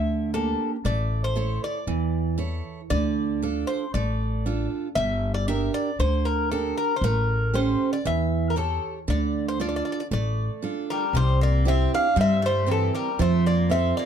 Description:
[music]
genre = greek folk, Greek bouzouki band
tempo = 117 BPM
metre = 4/4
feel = straight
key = D minor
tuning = A4 = 440 Hz
[part]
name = Greek bouzouki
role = melody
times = 0.0-14.1 s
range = A4 to F5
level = -27 LUFS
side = left 2 dB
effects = none
[part]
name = picked steel-string acoustic guitar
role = accompaniment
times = 0.0-14.1 s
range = C3 to C#5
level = -27 LUFS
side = right 5 dB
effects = none
[part]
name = upright bass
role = bass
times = 0.0-13.9 s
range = G1 to G2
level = -25 LUFS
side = left 1 dB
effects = none
[part]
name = Greek bouzouki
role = second line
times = 10.9-14.1 s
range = E3 to D4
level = -32 LUFS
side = left 1 dB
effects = none
[sound]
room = moderate small room reverb, RT60 0.5 s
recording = dark, warm production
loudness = -22 LUFS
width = side -8 dB against mid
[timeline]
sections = 0.0-11.1 A section; 11.1-14.1 B section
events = none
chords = 0.0 Gm; 0.9 A; 2.9 Dm; 5.0 Gm; 7.0 A7; 9.1 Dm; 11.1 C; 13.2 F

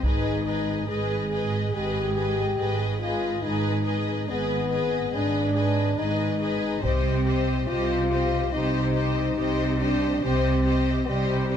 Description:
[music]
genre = cinematic, epic orchestral film score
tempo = 71 BPM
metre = 4/4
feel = straight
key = unclear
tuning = A4 = 439 Hz
[part]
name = rich symphonic violin section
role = melody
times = 0.0-11.6 s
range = Eb5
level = -36 LUFS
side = left 5 dB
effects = none
[part]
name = warm studio violin section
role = second line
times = 0.0-11.6 s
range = Cb5 to C5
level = -34 LUFS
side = left 4 dB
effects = none
[part]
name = rich symphonic viola section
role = accompaniment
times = 0.0-11.6 s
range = G4 to Ab4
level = -33 LUFS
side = right 2 dB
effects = none
[part]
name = mellow French horn section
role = sustained chords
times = 0.0-11.6 s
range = G3 to Ab4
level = -27 LUFS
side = left 3 dB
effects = none
[part]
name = rich symphonic cello section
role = bass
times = 0.0-11.6 s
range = Ab2 to C3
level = -29 LUFS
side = right 2 dB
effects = none
[part]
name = warm symphonic double bass section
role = bass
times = 0.0-11.6 s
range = Ab1 to C2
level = -30 LUFS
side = right 4 dB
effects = none
[part]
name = taiko ensemble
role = drums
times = 0.0-1.7, 6.8-8.5 s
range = none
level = -27 LUFS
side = equal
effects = none
[sound]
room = light reverb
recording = close, detailed microphones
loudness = -22 LUFS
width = side -8 dB against mid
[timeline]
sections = 0.0-11.6 A section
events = none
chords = 0.0 Abm; 6.8 Cm

